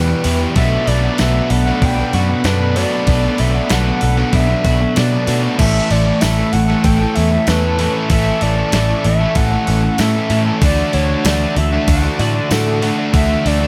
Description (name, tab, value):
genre	rock, shoegaze and dream pop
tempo	95 BPM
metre	4/4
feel	straight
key	unclear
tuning	A4 = 439 Hz
part	reedy FM lead	melody	0.0-13.7 s	A4 to G5	-24 LUFS	equal	chorus, digital delay
part	brassy analog pad	sustained chords	0.0-13.7 s	F#4 to E6	-30 LUFS	equal	chorus
part	twelve-string electric guitar	arpeggios	0.0-13.7 s	E3 to G4	-28 LUFS	equal	none
part	biting overdriven guitar	riff	0.0-13.7 s	E2 to A4	-26 LUFS	equal	reverse reverb
part	distorted electric guitar	riff	0.0-13.7 s	A2 to G4	-25 LUFS	equal	distortion
part	fuzz guitar	riff	0.0-13.7 s	E2 to D4	-26 LUFS	equal	distortion, subtle chorus
part	vintage muted picked electric bass	bass	0.0-13.7 s	A1 to B2	-19 LUFS	equal	none
part	crisp 8-bit digital drum machine	drums	0.2-13.6 s	crash cymbal, hi-hat, kick drum, snare drum	-22 LUFS	equal	overdrive
part	tambourine	percussion	1.2-12.7 s	none	-34 LUFS	equal	none
room	light reverb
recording	none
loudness	-15 LUFS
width	mono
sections	0.0-13.7 A section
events	none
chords	0.0 Em; 0.6 Bm7; 5.6 A; 10.6 Dadd9